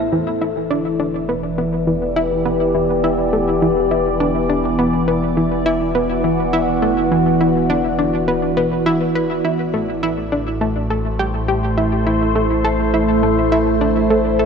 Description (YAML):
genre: ambient, sequencer-driven space music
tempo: 103 BPM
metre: 4/4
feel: straight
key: E minor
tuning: A4 = 439 Hz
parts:
  - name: evolving wavetable pad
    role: sustained chords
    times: 0.0-14.5 s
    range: A2 to D5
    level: -17 LUFS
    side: equal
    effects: phaser, built-in reverb, shimmer reverb
  - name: analog pluck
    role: riff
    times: 0.0-14.5 s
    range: E3 to B4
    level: -20 LUFS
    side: equal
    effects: chorus, vintage 12-bit sampler grit, tape echo, shimmer reverb
  - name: warm sub bass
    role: bass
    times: 0.0-14.5 s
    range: E1 to A1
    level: -27 LUFS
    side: equal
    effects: none
room: moderate plate reverb, RT60 3.3 s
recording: cassette tape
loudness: -15 LUFS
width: side -6 dB against mid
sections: 0.1-14.5 A section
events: none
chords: 0.1 Em7; 9.4 Am